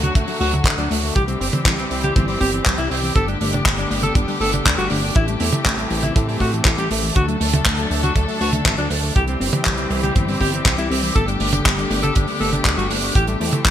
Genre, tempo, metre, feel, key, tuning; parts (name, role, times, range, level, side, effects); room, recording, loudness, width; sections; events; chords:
italo disco; 120 BPM; 4/4; straight; A4 = 440 Hz
warm alto saxophone; melody; 0.0-13.6 s; A3 to A4; -25 LUFS; left 1 dB; ping-pong delay
muted symphonic string section; sustained chords; 0.0-13.7 s; D3 to A4; -26 LUFS; left 2 dB
warbly dusty pluck; arpeggios; 0.0-13.7 s; D3 to C4; -27 LUFS; left 2 dB; chorus, ping-pong delay
chorused synth bass; bass; 0.0-13.7 s; G1 to A2; -24 LUFS; equal
damped 70s drum kit; drums; 0.0-13.7 s; handclaps, hi-hat, toms; -22 LUFS; right 1 dB; gated reverb
kick drum; drums; 0.2-13.7 s; -18 LUFS; equal
light reverb, small room ambience; bright 1980s-style digital production; -16 LUFS; side -10 dB against mid
0.0-13.7 A section
0.0 D; 1.2 C; 3.2 Gadd9; 5.2 Am7; 7.2 D; 9.2 C; 11.2 Gadd9; 13.2 Am7